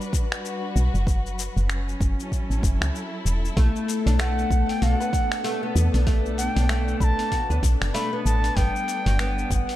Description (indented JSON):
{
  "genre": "organic downtempo",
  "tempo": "96 BPM",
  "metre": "4/4",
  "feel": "swing 59% on 16ths",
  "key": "B minor",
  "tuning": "A4 = 440 Hz",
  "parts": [
    { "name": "warm studio string section", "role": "sustained chords", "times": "0.0-9.8 s", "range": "B2 to F#5", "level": "-32 LUFS", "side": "left 1 dB", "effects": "sidechain pumping" },
    { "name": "dusty soul sampler-style drum kit", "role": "drums", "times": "0.0-9.8 s", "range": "finger snaps, hi-hat, shaker", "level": "-32 LUFS", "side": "left 2 dB", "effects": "small room ambience" },
    { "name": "electronic kick drum", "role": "drums", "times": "0.1-9.7 s", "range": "none", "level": "-23 LUFS", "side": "equal", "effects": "small room ambience" },
    { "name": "woody FM bass", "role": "bass", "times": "0.8-9.6 s", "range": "E1 to E2", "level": "-23 LUFS", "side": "equal", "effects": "tube saturation, sidechain pumping" },
    { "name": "oud", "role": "arpeggios", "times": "3.6-9.8 s", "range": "A3 to B4", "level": "-29 LUFS", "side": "left 2 dB", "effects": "ping-pong delay" },
    { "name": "bright reedy bansuri", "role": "melody", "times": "4.2-9.8 s", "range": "F#5 to B5", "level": "-28 LUFS", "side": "equal", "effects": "ping-pong delay" }
  ],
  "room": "light reverb, small room reverb",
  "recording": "none",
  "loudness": "-21 LUFS",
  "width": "side -14 dB against mid",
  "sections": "0.0-9.8 A section",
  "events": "none",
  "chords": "0.0 Gmaj7; 1.1 F#m7; 3.6 Bm7; 8.6 G"
}